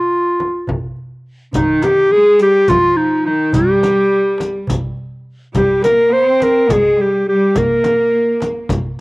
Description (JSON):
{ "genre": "Turkish makam ensemble", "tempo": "210 BPM (eighths)", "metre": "7/8", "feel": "straight", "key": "unclear", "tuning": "A4 = 441 Hz", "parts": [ { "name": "mellow clarinet", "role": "melody", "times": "0.0-8.7 s", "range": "Eb4 to C5", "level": "-12 LUFS", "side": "equal", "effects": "cassette tape" }, { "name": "darbuka", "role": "percussion", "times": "0.4-8.8 s", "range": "none", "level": "-24 LUFS", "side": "right 1 dB", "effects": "none" }, { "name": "frame drum", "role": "percussion", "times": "0.4-8.8 s", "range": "none", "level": "-22 LUFS", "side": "left 1 dB", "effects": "none" }, { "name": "rich chamber cello section", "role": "second line", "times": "1.5-8.7 s", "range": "Eb3 to C4", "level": "-21 LUFS", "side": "right 1 dB", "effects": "cassette tape" }, { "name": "riq", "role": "percussion", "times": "1.5-8.8 s", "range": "none", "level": "-28 LUFS", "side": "left 2 dB", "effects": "none" } ], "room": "light reverb, small room ambience", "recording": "home recording on cassette", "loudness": "-12 LUFS", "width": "side -24 dB against mid", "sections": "0.0-1.5 A section; 1.5-9.0 B section", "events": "none", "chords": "none" }